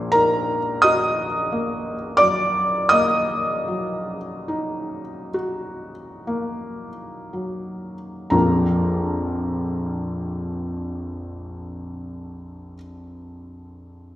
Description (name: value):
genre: classical, romantic nocturne for solo piano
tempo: 18-30 BPM (dotted quarters)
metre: 12/8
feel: rubato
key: Bb major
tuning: A4 = 441 Hz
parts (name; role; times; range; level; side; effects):
- felt-muted upright piano; solo; 0.0-14.2 s; Bb1 to Eb6; -21 LUFS; equal; none
room: wet recital hall reverb, RT60 1.7 s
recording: heard from further back in the room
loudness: -20 LUFS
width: side -13 dB against mid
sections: 0.0-8.3 A section; 8.3-14.2 B section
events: slowing down 0.0-8.3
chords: 0.0 Ebm/Bb; 8.3 Bb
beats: 0.85 2.93 5.35 | 8.32 10.96 13.63